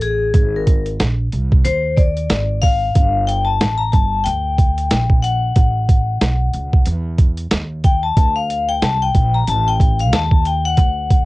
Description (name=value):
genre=hip hop, jazz-hop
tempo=92 BPM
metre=4/4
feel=swing 58% on 16ths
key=unclear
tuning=A4 = 440 Hz
part: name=vibraphone with hard mallets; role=accompaniment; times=0.0-11.2 s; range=Ab4 to Bb5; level=-19 LUFS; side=left 4 dB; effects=cassette tape
part: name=upright bass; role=bass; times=0.0-11.2 s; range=G1 to E2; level=-20 LUFS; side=right 1 dB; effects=none
part: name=boom bap sampler-style drum kit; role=drums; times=0.0-11.2 s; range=hi-hat, kick drum, snare drum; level=-14 LUFS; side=right 1 dB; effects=cassette tape
room=little or no reverb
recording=home recording on cassette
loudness=-14 LUFS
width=side -19 dB against mid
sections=0.0-11.2 A section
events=vibraphone solo 0.0-11.2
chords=0.3 Ab; 3.0 Gm; 5.6 A5; 8.2 D5